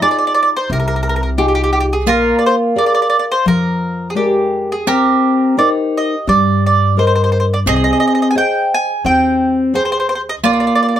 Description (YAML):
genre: italian folk, Italian serenade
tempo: 86 BPM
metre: 4/4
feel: swing 54% on 8ths, rubato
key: unclear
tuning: A4 = 440 Hz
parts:
  - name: mandolin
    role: melody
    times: 0.0-11.0 s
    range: G4 to Ab5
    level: -16 LUFS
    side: right 2 dB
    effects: none
  - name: mandolin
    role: second line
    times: 0.0-11.0 s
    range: Eb4 to Ab4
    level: -20 LUFS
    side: right 5 dB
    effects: none
  - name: nylon-string guitar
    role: accompaniment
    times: 0.0-11.0 s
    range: C3 to G5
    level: -16 LUFS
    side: left 2 dB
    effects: none
  - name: upright bass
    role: bass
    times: 0.7-10.7 s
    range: Bb1 to G2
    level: -19 LUFS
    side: equal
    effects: none
room: moderate studio reverb, RT60 0.5 s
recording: none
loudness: -12 LUFS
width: side -10 dB against mid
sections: 0.0-11.0 A section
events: none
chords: 0.0 Fm7; 2.1 Bb7; 4.9 Cm7; 7.7 Abmaj7/C; 10.4 Bb